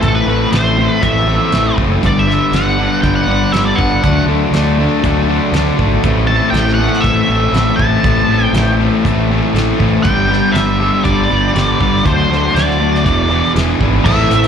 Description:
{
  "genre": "classic rock",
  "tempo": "120 BPM",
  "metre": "4/4",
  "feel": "straight",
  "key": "A dorian",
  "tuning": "A4 = 439 Hz",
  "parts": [
    { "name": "octave-fuzz lead guitar", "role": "melody", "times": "0.0-14.5 s", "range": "A4 to A5", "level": "-17 LUFS", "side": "right 1 dB", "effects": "wah, distortion, slapback echo" },
    { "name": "biting overdriven guitar", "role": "riff", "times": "0.0-14.5 s", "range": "E2 to D4", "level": "-17 LUFS", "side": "left 13 dB", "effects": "slapback echo" },
    { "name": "overdriven semi-hollow guitar", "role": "riff", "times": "0.0-14.5 s", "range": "G2 to G#4", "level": "-18 LUFS", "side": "right 9 dB", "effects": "slapback echo" },
    { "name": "growling fingered electric bass", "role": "bass", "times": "0.0-14.5 s", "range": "E1 to D2", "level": "-16 LUFS", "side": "equal", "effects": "overdrive" },
    { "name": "damped 70s drum kit", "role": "drums", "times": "0.0-14.5 s", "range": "crash cymbal, hi-hat, kick drum, snare drum", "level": "-19 LUFS", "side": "equal", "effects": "none" },
    { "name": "overdriven electric guitar", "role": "riff", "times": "14.0-14.5 s", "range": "A2 to E4", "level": "-19 LUFS", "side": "right 1 dB", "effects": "slapback echo" },
    { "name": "tonewheel organ", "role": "sustained chords", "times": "14.1-14.5 s", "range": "C4 to B4", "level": "-25 LUFS", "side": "right 2 dB", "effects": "none" }
  ],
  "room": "light reverb, small room reverb",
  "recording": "live gig heard through the venue's PA, club reverb",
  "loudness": "-11 LUFS",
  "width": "side -7 dB against mid",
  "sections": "0.0-14.1 A section",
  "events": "none",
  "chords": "0.0 Am; 2.0 G; 4.0 D; 6.0 Am; 10.0 G; 12.1 D; 13.1 E7"
}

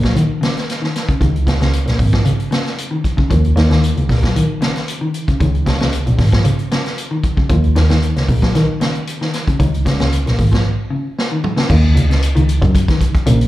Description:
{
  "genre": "afrobeat",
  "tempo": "114 BPM",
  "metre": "4/4",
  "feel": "straight",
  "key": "Eb minor",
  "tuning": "A4 = 438 Hz",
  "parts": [
    { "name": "mellow electric guitar", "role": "arpeggios", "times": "0.0-13.4 s", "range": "Db3 to Gb3", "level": "-22 LUFS", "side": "left 3 dB", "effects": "none" },
    { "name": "vintage drum kit", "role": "drums", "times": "0.0-13.5 s", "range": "crash cymbal, hi-hat, kick drum, snare drum, toms", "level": "-18 LUFS", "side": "equal", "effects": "none" },
    { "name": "warm double bass", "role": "bass", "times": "0.2-13.5 s", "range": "Ab1 to Eb3", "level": "-14 LUFS", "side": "equal", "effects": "none" }
  ],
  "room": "light reverb, small room ambience",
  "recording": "live gig heard through the venue's PA, club reverb",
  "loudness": "-13 LUFS",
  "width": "side -15 dB against mid",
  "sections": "0.0-11.7 A section; 11.7-13.5 B section",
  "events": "break 10.6-11.7; drum fill 11.2-11.7",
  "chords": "0.0 Ebm7; 1.2 N.C.; 3.3 Eb7(no3); 5.4 N.C.; 7.5 Eb7(no3); 9.6 N.C.; 11.7 Ebm7"
}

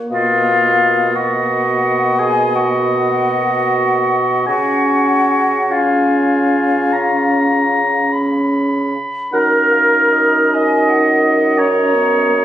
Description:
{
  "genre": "classical, slow romantic movement for wind quintet",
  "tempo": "48-58 BPM (dotted quarters)",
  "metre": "12/8",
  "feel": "rubato",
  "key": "F# major",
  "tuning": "A4 = 445 Hz",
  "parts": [
    { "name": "mellow French horn", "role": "accompaniment", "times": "0.0-12.4 s", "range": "A#3 to D#4", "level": "-22 LUFS", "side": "equal", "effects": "none" },
    { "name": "mellow hollow silver concert flute", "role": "melody", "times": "0.1-12.4 s", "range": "E#5 to A#5", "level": "-20 LUFS", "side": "left 4 dB", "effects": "none" },
    { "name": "mellow oboe", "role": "second line", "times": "0.1-12.4 s", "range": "D#5 to B5", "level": "-21 LUFS", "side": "left 2 dB", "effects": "none" },
    { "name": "clear clarinet", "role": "accompaniment", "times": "0.1-12.4 s", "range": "E#4 to D#5", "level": "-16 LUFS", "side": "right 2 dB", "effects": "none" },
    { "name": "warm bassoon", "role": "bass", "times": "0.1-12.4 s", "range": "F#2 to C#3", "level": "-19 LUFS", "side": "right 1 dB", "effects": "none" }
  ],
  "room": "moderate recital hall reverb, RT60 1.4 s",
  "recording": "recorded on a phone in the room, studio reverb",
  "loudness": "-12 LUFS",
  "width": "side -11 dB against mid",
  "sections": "0.0-9.3 A section; 9.3-12.4 B section",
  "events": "none",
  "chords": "0.1 Bmaj7; 4.5 C#; 9.3 F#"
}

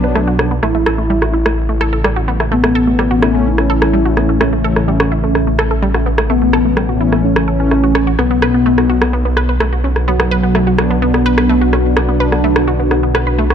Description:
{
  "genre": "melodic techno",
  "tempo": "127 BPM",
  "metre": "4/4",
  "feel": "straight",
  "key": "unclear",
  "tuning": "A4 = 440 Hz",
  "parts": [
    { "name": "fat analog lead", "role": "melody", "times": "0.0-13.3 s", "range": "F#3 to E4", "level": "-17 LUFS", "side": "left 1 dB", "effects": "lush chorus, cassette tape, digital delay" },
    { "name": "deep dark ambient pad", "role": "sustained chords", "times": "1.7-13.5 s", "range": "C#4 to F#5", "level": "-23 LUFS", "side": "equal", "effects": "chorus, built-in reverb" },
    { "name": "wide unison pluck", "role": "arpeggios", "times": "0.0-13.5 s", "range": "F#3 to C#5", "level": "-20 LUFS", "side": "right 1 dB", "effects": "ping-pong delay" },
    { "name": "brassy analog pad", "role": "stabs", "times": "0.0-12.7 s", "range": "E3 to D4", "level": "-20 LUFS", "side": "left 3 dB", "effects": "chorus, tremolo, ping-pong delay" },
    { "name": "swelling detuned saw bass", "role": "bass", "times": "0.0-13.5 s", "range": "A1 to B1", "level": "-17 LUFS", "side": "equal", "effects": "none" },
    { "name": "electronic rim click", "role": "drums", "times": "0.2-13.5 s", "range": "none", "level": "-19 LUFS", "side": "equal", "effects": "low-pass filter on snare" }
  ],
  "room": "light reverb",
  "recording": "none",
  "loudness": "-11 LUFS",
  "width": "side -8 dB against mid",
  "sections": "0.0-13.5 A section",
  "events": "filter sweep on analog synth lead 0.0-13.5; filter sweep on ambient pad 0.0-13.5",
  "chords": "0.0 Bm; 0.6 A; 8.2 Bm"
}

